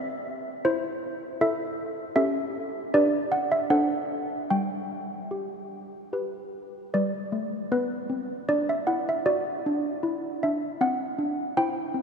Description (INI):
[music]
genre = classical, tune for handbells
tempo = 78 BPM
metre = 3/4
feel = straight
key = G major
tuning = A4 = 440 Hz
[part]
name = malleted handbells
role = solo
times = 0.0-12.0 s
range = G3 to G5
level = -25 LUFS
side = equal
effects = none
[sound]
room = wet cathedral reverb, RT60 4.8 s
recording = none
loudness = -25 LUFS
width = side -6 dB against mid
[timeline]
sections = 0.0-6.9 A section; 6.9-12.0 A section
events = none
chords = 0.0 Am/C; 2.2 A7/C#; 2.9 G/D; 3.7 D7; 4.5 G; 9.3 D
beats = 0.64 1.40 | 2.16 2.93 3.70 | 4.50 5.32 6.13 | 6.93 7.71 8.49 | 9.26 10.04 10.80 | 11.56